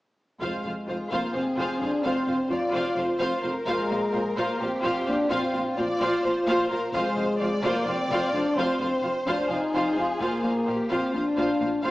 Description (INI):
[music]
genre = cinematic, epic orchestral film score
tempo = 257 BPM (eighths)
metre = 7/8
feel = straight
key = F dorian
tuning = A4 = 440 Hz
[part]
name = warm symphonic violin section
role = melody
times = 0.4-11.9 s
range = F5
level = -34 LUFS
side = left 1 dB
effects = none
[part]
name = warm symphonic viola section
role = accompaniment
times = 0.4-11.9 s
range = F4 to C5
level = -29 LUFS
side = right 1 dB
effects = none
[part]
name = mellow French horn section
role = sustained chords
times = 0.4-11.9 s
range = Ab3 to F4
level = -27 LUFS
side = left 1 dB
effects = none
[part]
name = warm symphonic cello section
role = bass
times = 0.4-11.9 s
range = F2 to Bb2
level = -35 LUFS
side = right 1 dB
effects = none
[part]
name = warm symphonic double bass section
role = bass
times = 0.4-11.9 s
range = F1 to Bb1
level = -40 LUFS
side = right 1 dB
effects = none
[part]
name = taiko ensemble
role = drums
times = 0.4-11.1 s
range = none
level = -48 LUFS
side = equal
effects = none
[part]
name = warm symphonic violin section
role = second line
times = 0.9-11.9 s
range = F4 to D5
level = -32 LUFS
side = left 1 dB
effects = none
[sound]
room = wet scoring stage reverb, RT60 1.7 s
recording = small speaker sound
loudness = -23 LUFS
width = side -17 dB against mid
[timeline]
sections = 0.4-11.9 A section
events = none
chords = 0.4 Fm; 3.7 Bbsus2; 6.9 Fm; 10.2 Bbsus2